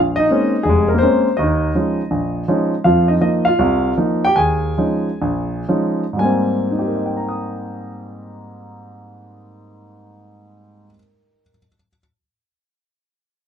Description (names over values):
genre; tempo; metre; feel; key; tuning
solo jazz; 115-165 BPM; 4/4; swing 66% on 8ths; Ab major; A4 = 439 Hz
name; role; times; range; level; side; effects
warm grand piano; solo; 0.0-12.0 s; F1 to Eb6; -16 LUFS; equal; none
room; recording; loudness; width
light reverb; minimal, uncompressed stereo recording; -15 LUFS; side -8 dB against mid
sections
0.0-6.2 A section; 6.2-10.4 B section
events
slowing down 2.8-6.2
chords
0.0 Bbm9; 1.4 Eb9sus4; 2.8 F7sus4; 4.4 Eb9sus4; 6.2 Abmaj9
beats
0.29 0.65 1.01 | 1.38 1.75 2.11 2.47 | 2.84 3.21 3.58 3.96 | 4.36 4.78 5.21 5.68 | 6.18 6.71 7.23 7.75 | 8.28 8.80 9.32 9.85